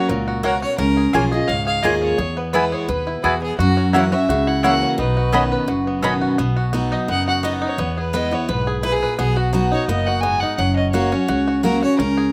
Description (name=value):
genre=bluegrass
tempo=172 BPM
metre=4/4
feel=straight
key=B major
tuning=A4 = 440 Hz
part: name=bluegrass banjo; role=melody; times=0.0-12.3 s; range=F#3 to B4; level=-28 LUFS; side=equal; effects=slapback echo
part: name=warm fiddle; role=melody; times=0.0-11.8 s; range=A#4 to G#5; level=-26 LUFS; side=equal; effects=slapback echo
part: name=picked steel-string acoustic guitar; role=accompaniment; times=0.0-12.3 s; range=E2 to G#4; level=-23 LUFS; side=equal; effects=none
part: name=upright bass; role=bass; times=0.1-12.3 s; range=F#1 to F#2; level=-26 LUFS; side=equal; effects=none
part: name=clear fiddle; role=second line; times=0.4-4.0, 8.8-12.3 s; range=F#4 to C#5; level=-27 LUFS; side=equal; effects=slapback echo
part: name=mandolin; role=stabs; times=0.4-6.1 s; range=A#3 to B5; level=-23 LUFS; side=equal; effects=slapback echo
room=little or no reverb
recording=recorded outdoors, with no room sound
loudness=-19 LUFS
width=mono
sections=0.0-6.4 A section; 6.4-12.3 A section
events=none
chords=0.0 F#; 0.8 C#6; 2.2 E; 3.6 F#7; 5.0 Badd9; 6.4 B; 7.8 E; 9.2 B; 10.6 F#